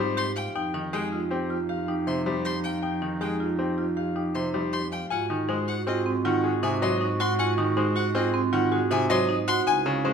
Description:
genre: classical, minimalist pattern music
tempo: 158 BPM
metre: 6/4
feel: straight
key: Ab mixolydian from 5.1 s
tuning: A4 = 439 Hz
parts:
  - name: bright grand piano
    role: melody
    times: 0.0-10.1 s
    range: G4 to Ab5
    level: -31 LUFS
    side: left 8 dB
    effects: none
  - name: warm clarinet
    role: second line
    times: 0.0-10.1 s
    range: C4 to Gb4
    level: -32 LUFS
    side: equal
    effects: none
  - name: bright concert grand piano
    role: accompaniment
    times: 0.0-10.1 s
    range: C3 to C4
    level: -30 LUFS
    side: left 2 dB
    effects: none
  - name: marimba with medium hard mallets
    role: arpeggios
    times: 0.0-10.1 s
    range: C4 to C5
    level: -28 LUFS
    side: right 6 dB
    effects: none
  - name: clear cello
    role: bass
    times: 0.0-10.1 s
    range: Db2 to Ab2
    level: -32 LUFS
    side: right 2 dB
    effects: none
  - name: clear violin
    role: arpeggios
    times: 0.2-9.8 s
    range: Eb5 to C6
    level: -32 LUFS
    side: left 5 dB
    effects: none
room: moderate large studio reverb, RT60 1.3 s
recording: minimal, uncompressed stereo recording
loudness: -23 LUFS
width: side -6 dB against mid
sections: 0.0-5.1 A section; 5.1-10.1 B section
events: none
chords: 0.0 Abmaj7; 0.6 F7(no3); 5.1 Ab7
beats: 0.17 | 0.55 0.93 1.31 1.69 2.07 2.45 | 2.83 3.21 3.59 3.97 4.35 4.73 | 5.11 5.49 5.87 6.25 6.63 7.01 | 7.39 7.77 8.15 8.53 8.91 9.29 | 9.67 10.05

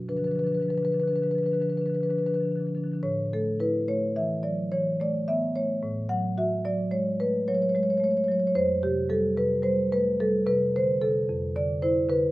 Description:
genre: classical, contemporary piece for solo marimba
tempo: 95-113 BPM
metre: 5/4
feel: rubato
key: unclear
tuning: A4 = 437 Hz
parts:
  - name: marimba with soft mallets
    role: solo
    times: 0.0-12.3 s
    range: F2 to F#5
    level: -24 LUFS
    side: equal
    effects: none
room: light reverb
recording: close, detailed microphones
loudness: -24 LUFS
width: side -18 dB against mid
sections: 0.0-3.0 A section; 3.0-12.3 B section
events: none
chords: 0.1 Dm6; 3.0 Asus2; 5.8 F#madd9/A; 8.6 Fadd9; 11.3 Dmadd9/F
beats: | 0.10 0.70 1.28 1.87 2.45 | 3.04 3.60 4.17 4.72 5.28 | 5.83 6.38 6.94 7.49 8.03 | 8.57 9.11 9.65 10.20 10.74 | 11.28 11.82

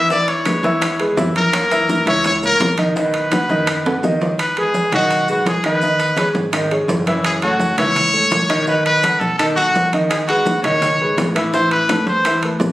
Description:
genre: latin, salsa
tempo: 168 BPM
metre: 4/4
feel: straight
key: E major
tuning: A4 = 439 Hz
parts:
  - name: bright trumpet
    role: melody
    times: 0.0-12.4 s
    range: F#4 to E5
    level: -17 LUFS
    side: left 1 dB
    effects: none
  - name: clear grand piano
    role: accompaniment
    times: 0.0-12.7 s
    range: D#3 to E5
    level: -19 LUFS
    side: equal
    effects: none
  - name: upright bass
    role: bass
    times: 0.0-12.7 s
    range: F#1 to B2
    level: -28 LUFS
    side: equal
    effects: none
  - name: bongos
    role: percussion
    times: 0.1-4.4, 10.1-12.7 s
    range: none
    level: -25 LUFS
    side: left 2 dB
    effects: none
  - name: congas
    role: percussion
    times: 0.1-12.7 s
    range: none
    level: -25 LUFS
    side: equal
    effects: none
  - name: maracas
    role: percussion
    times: 0.1-12.7 s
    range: none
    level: -37 LUFS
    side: right 2 dB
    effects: none
  - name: timbales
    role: percussion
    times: 0.3-12.7 s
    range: none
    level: -24 LUFS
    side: right 2 dB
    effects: none
  - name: claves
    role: percussion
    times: 0.5-12.4 s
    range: none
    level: -32 LUFS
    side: right 2 dB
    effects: none
room: moderate studio reverb, RT60 0.7 s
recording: recorded on a phone in the room, studio reverb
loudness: -14 LUFS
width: side -16 dB against mid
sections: 0.0-4.4 A section; 4.4-12.7 B section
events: drum fill 3.9-4.4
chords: 0.1 E; 1.5 F#7; 3.0 B; 4.4 Emaj7; 5.8 C#madd9; 7.2 F#m7; 8.7 B7; 10.1 Emaj7; 11.5 Amadd9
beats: | 0.11 0.46 0.82 1.18 | 1.53 1.89 2.25 2.61 | 2.96 3.32 3.68 4.04 | 4.39 4.75 5.11 5.46 | 5.82 6.18 6.54 6.89 | 7.25 7.61 7.96 8.32 | 8.68 9.04 9.39 9.75 | 10.11 10.46 10.82 11.18 | 11.54 11.89 12.25 12.61

